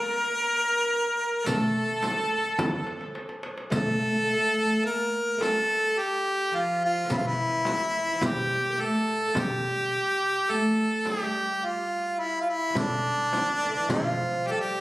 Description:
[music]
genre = Arabic maqam ensemble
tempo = 106 BPM (eighths)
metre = 10/8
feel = straight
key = A maqam hijaz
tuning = A4 = 438 Hz
[part]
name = clear harmonica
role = melody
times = 0.0-14.8 s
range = D4 to Bb4+28c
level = -25 LUFS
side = equal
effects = none
[part]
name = oud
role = second line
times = 0.0-14.8 s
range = D3 to Bb3+25c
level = -32 LUFS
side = equal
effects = none
[part]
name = rich studio violin section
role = second line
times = 0.0-3.2 s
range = A4 to Bb4+25c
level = -30 LUFS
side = equal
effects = none
[part]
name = riq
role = percussion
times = 0.1-14.2 s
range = none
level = -38 LUFS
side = equal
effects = none
[part]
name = darbuka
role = percussion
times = 0.3-14.2 s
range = none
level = -36 LUFS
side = equal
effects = none
[part]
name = frame drum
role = percussion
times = 1.5-14.2 s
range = none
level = -32 LUFS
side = equal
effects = none
[sound]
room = wet recital hall reverb, RT60 1.3 s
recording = recorded on a phone in the room, club ambience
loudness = -24 LUFS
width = side -18 dB against mid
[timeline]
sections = 0.0-3.7 A section; 3.7-14.8 B section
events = drum fill 2.6-3.7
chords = none

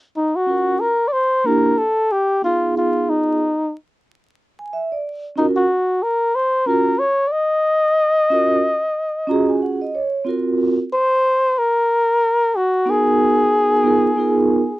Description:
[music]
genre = hip hop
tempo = 92 BPM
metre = 4/4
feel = swing 59% on 16ths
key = unclear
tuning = A4 = 440 Hz
[part]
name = mellow flugelhorn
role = melody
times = 0.2-14.8 s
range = Eb4 to Eb5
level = -16 LUFS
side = left 1 dB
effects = none
[part]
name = vibraphone with soft mallets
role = accompaniment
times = 0.5-14.6 s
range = Bb3 to Bb5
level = -19 LUFS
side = right 2 dB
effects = none
[sound]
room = light reverb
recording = dry, close 1970s-style studio recording, vinyl crackle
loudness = -15 LUFS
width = side -18 dB against mid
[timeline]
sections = 0.0-10.3 A section; 10.3-14.8 B section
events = vibraphone fill 9.0-10.3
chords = 0.0 Dbadd11; 1.1 Bbmaj13; 2.4 Fm7b5; 3.7 N.C.; 5.1 Ebm7; 10.3 Gbmaj7#11/C; 12.9 Abm7; 14.2 Abm69/Cb

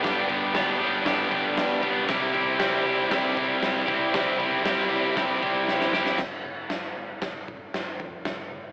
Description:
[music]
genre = garage rock duo or trio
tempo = 117 BPM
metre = 4/4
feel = straight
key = unclear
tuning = A4 = 440 Hz
[part]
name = crunchy overdriven guitar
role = riff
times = 0.0-6.2 s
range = G2 to G4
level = -25 LUFS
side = equal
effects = none
[part]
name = hollow-body short-scale picked electric bass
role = bass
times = 0.0-8.7 s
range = F#1 to C3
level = -49 LUFS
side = equal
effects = none
[part]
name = oversized low-tuned drum kit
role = drums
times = 0.0-8.4 s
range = crash cymbal, hi-hat, kick drum, snare drum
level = -33 LUFS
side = equal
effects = none
[sound]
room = light reverb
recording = AM radio sound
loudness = -25 LUFS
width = mono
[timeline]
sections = 0.0-6.2 A section; 6.2-8.7 B section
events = drum fill 5.7-6.2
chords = 0.0 G; 2.1 C; 6.2 N.C.

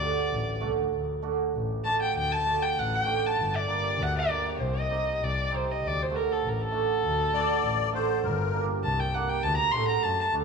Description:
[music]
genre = klezmer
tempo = 99 BPM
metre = 2/4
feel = straight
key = D phrygian dominant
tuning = A4 = 440 Hz
[part]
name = dark violin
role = melody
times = 0.0-10.3 s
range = A4 to C6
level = -28 LUFS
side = left 1 dB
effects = none
[part]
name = cimbalom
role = accompaniment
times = 0.0-10.4 s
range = A3 to G4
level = -30 LUFS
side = right 9 dB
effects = none
[part]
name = dark double bass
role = bass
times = 0.0-10.4 s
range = G1 to A2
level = -32 LUFS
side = left 2 dB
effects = none
[part]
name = musette accordion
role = second line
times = 7.3-8.7 s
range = Bb4 to D5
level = -30 LUFS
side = left 10 dB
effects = none
[sound]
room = wet echo chamber reverb, RT60 2.4 s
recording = 1960s-style stereo with parts hard left and right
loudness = -25 LUFS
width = side -5 dB against mid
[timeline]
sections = 0.9-10.4 A section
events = violin solo 0.9-10.4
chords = 0.0 D; 3.4 Gm; 4.6 Cm; 5.8 D; 8.2 Gm; 9.5 D

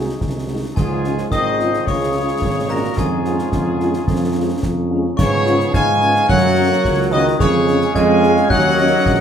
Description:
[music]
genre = military-style march for wind band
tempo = 108 BPM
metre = 2/4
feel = straight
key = Db major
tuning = A4 = 440 Hz
[part]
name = warm trumpet section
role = melody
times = 0.0-9.2 s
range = Ab4 to G#5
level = -22 LUFS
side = left 2 dB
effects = none
[part]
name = glockenspiel with brass mallets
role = second line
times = 0.0-9.2 s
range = Ab5 to G#6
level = -25 LUFS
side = left 6 dB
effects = none
[part]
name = mellow woodwind section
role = second line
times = 0.0-9.2 s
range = Eb4 to E#5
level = -26 LUFS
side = equal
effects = none
[part]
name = warm euphonium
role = second line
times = 0.0-9.2 s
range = Ab2 to G#3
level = -20 LUFS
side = right 2 dB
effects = none
[part]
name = dark French horn section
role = accompaniment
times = 0.0-8.9 s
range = G#3 to G#4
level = -24 LUFS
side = left 2 dB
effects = none
[part]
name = mellow trombone section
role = sustained chords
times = 0.0-9.2 s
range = F3 to Db4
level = -26 LUFS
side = right 1 dB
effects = none
[part]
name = warm tuba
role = bass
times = 0.0-9.2 s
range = Ab1 to G#2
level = -21 LUFS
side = right 2 dB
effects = none
[part]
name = concert snare drum, concert bass drum and clash cymbals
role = drums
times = 0.2-9.2 s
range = none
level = -23 LUFS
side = equal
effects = none
[sound]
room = wet large studio reverb, RT60 0.8 s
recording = heard from further back in the room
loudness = -14 LUFS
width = side -8 dB against mid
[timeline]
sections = 0.0-9.2 A section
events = none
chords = 0.0 Ab7/C; 0.8 Db; 3.0 Db/F; 5.2 C#7/G#; 6.3 F#; 7.4 C#/E#; 8.5 D#m7

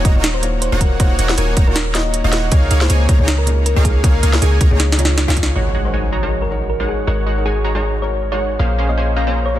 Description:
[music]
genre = future bass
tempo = 158 BPM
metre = 4/4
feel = swing 55% on 16ths, half-time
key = unclear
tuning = A4 = 440 Hz
[part]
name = thumb-piano-like synth pluck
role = melody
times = 0.0-9.6 s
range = F4 to F5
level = -24 LUFS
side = equal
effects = chorus, sidechain pumping, digital delay
[part]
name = felt-muted upright piano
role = accompaniment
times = 0.0-9.6 s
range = Db3 to Db5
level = -26 LUFS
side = left 4 dB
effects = vintage 12-bit sampler grit, sidechain pumping, ping-pong delay
[part]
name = supersaw stab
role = riff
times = 0.0-9.6 s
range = Ab3 to Bb5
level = -22 LUFS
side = right 1 dB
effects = sidechain pumping, low-pass filter, ping-pong delay
[part]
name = warm 808-style bass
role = bass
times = 0.0-9.6 s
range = Eb1 to Db2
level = -17 LUFS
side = equal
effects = tube saturation, sidechain pumping
[part]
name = electronic kick drum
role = drums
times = 0.0-5.5 s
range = none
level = -14 LUFS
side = equal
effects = none
[part]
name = trap drum kit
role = drums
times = 0.1-5.5 s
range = hi-hat, snare drum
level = -20 LUFS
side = right 1 dB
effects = low-pass filter on hats, soft clipping on snare, low-pass filter on snare
[part]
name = impact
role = sound effects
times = 5.6-7.1 s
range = none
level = -27 LUFS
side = equal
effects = none
[sound]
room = digital ambience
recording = dense, heavily limited modern master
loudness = -14 LUFS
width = side -13 dB against mid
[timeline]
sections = 0.0-5.6 A section; 5.6-9.6 B section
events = drop 0.0-5.6; drum fill 4.8-5.6; impact 5.6-7.1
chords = 0.0 Ebm7; 2.5 Db69; 5.6 Ab7sus4; 8.6 Bbm9

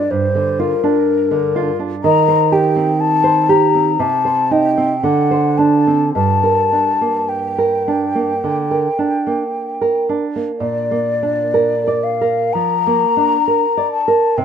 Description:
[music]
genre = romantic duo for flute and classical guitar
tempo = 52-66 BPM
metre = 4/4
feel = rubato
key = G minor, Bb major from 10.6 s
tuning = A4 = 439 Hz
[part]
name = mellow hollow concert flute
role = melody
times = 0.0-14.4 s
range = Bb4 to Bb5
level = -17 LUFS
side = left 5 dB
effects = none
[part]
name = nylon-string guitar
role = accompaniment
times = 0.0-14.4 s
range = G2 to D5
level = -16 LUFS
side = right 4 dB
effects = none
[sound]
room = light reverb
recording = minimal, uncompressed stereo recording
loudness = -13 LUFS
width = side -8 dB against mid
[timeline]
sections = 0.0-10.6 A section; 10.6-14.4 B section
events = none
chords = 0.0 Bb/G; 2.0 Eb6; 4.0 Adim/C; 5.0 D7; 6.1 Gm; 10.6 Bb

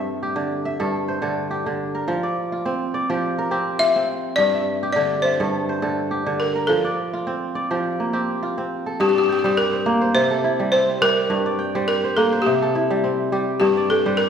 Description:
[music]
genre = west african traditional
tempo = 104 BPM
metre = 4/4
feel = swing 54% on 16ths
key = G dorian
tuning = A4 = 440 Hz
[part]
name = kora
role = arpeggios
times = 0.0-14.3 s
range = G2 to G5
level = -22 LUFS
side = right 1 dB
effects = none
[part]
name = balafon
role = melody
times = 3.8-14.3 s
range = G4 to E5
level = -20 LUFS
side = left 2 dB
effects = none
[sound]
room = wet recital hall reverb, RT60 1.7 s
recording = heard from further back in the room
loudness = -19 LUFS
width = side -7 dB against mid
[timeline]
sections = 0.0-9.0 A section; 9.0-14.3 B section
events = none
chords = 0.0 G5; 2.1 F5; 4.4 Gm; 6.7 F; 9.0 Gm; 10.2 C; 11.3 Gm; 12.5 C; 13.6 G5

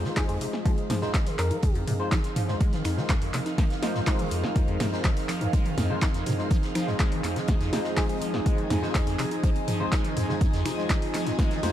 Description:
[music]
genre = acid house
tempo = 123 BPM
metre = 4/4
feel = straight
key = F minor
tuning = A4 = 440 Hz
[part]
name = dark analog pad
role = sustained chords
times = 0.0-11.7 s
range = F3 to Bb4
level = -34 LUFS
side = right 3 dB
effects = chorus, sidechain pumping
[part]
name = liquid acid bass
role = riff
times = 0.0-11.7 s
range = F2 to Ab3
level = -32 LUFS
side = equal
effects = phaser, tube saturation, cassette tape
[part]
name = overdriven tine electric piano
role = stabs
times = 0.0-11.7 s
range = Ab3 to C5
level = -34 LUFS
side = left 3 dB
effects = ensemble chorus, dub echo
[part]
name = huge arena drum kit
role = drums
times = 0.0-11.7 s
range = hi-hat, snare drum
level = -41 LUFS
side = right 1 dB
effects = sidechain pumping on hats, high-pass filter on hats, studio reverb, high-pass filter on snare, high-pass filter on room
[part]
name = airy breathy pad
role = texture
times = 0.1-11.7 s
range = C4 to Ab5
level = -35 LUFS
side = equal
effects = chorus, phaser, sidechain pumping
[part]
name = soft struck synth lead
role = melody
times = 0.2-1.8, 8.0-8.2 s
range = Ab4 to Bb4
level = -37 LUFS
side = left 1 dB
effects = chorus, ping-pong delay
[part]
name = electronic kick drum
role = drums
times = 0.2-11.5 s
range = none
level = -25 LUFS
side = equal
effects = overdrive, studio reverb
[part]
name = punchy analog drum machine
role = drums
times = 0.2-11.7 s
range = congas, finger snaps, handclaps, hi-hat, snare drum, toms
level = -31 LUFS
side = equal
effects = overdrive, studio reverb
[sound]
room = light reverb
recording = dark, warm production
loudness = -23 LUFS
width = side -11 dB against mid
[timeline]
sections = 0.0-11.7 A section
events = none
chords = 0.0 Fm7

